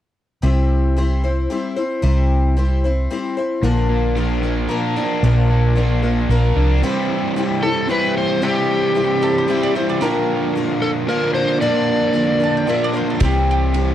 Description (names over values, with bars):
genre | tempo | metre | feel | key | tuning
folk rock and heartland rock | 113 BPM | 3/4 | straight | unclear | A4 = 445 Hz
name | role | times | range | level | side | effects
picked twelve-string acoustic guitar | accompaniment | 0.4-13.9 s | Bb2 to C5 | -22 LUFS | left 4 dB | none
hollow-body short-scale fingered electric bass | bass | 0.4-6.8, 13.2-13.9 s | Bb1 to C2 | -16 LUFS | equal | none
crunchy overdriven guitar | riff | 3.6-13.9 s | Bb2 to Bb4 | -20 LUFS | right 2 dB | none
overdriven slide guitar | melody | 7.6-12.9 s | G4 to D5 | -19 LUFS | left 1 dB | none
bowl-back mandolin | second line | 9.2-13.9 s | G4 to A5 | -26 LUFS | right 3 dB | none
damped 70s drum kit | drums | 13.2-13.9 s | kick drum, ride cymbal | -19 LUFS | equal | none
room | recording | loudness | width
little or no reverb | dry, close 1970s-style studio recording | -16 LUFS | side -11 dB against mid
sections
0.4-6.8 A section; 6.8-13.9 B section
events
none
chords
0.4 C; 3.6 Bb; 6.8 C; 10.0 Bb; 13.2 C